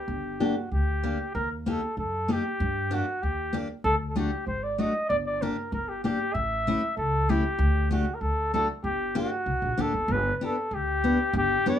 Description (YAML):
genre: alpine folk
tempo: 96 BPM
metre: 2/4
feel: straight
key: G harmonic minor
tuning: A4 = 439 Hz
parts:
  - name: clear flugelhorn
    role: melody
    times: 0.0-11.8 s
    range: F#4 to E5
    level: -28 LUFS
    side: equal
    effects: none
  - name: upright bass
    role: bass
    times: 0.1-11.5 s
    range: G1 to G2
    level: -29 LUFS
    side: equal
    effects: none
  - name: picked steel-string acoustic guitar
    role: accompaniment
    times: 0.4-11.8 s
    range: A3 to G4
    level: -28 LUFS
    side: left 2 dB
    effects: none
room: moderate small room reverb, RT60 0.5 s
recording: none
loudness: -25 LUFS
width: side -10 dB against mid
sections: 0.1-10.1 A section; 10.1-11.8 B section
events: none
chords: 0.1 Gm; 1.3 Eb; 2.6 Gm; 3.8 D; 5.1 Gm; 6.3 A; 7.6 Dsus4; 8.2 D; 8.8 Gm; 10.1 G